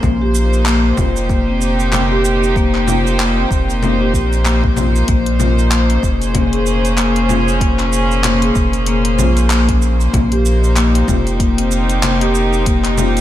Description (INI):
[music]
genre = organic downtempo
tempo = 95 BPM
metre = 4/4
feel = swing 58% on 16ths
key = unclear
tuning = A4 = 439 Hz
[part]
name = dark studio string section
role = sustained chords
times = 0.0-13.2 s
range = Bb2 to C5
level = -19 LUFS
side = right 1 dB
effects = sidechain pumping
[part]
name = marimba with soft mallets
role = arpeggios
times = 0.0-13.2 s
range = Bb3 to Ab4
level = -18 LUFS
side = left 3 dB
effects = low-pass filter, diffuse ambient delay
[part]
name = round analog bass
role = bass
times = 0.0-13.2 s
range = F1 to Bb1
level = -16 LUFS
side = equal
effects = sidechain pumping
[part]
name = deep house drum kit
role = drums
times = 0.0-13.2 s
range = congas, handclaps, hi-hat, shaker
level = -21 LUFS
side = left 2 dB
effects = none
[part]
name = electronic kick drum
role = drums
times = 0.0-12.8 s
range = none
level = -18 LUFS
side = equal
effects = none
[sound]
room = light reverb, digital ambience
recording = none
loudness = -12 LUFS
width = side -12 dB against mid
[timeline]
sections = 0.0-13.2 A section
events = none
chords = 0.0 Cm7; 5.1 Bbm7; 10.1 Cm7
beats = | 0.04 0.67 1.30 1.93 | 2.56 3.19 3.83 4.46 | 5.09 5.72 6.35 6.98 | 7.62 8.25 8.88 9.51 | 10.14 10.77 11.40 12.04 | 12.67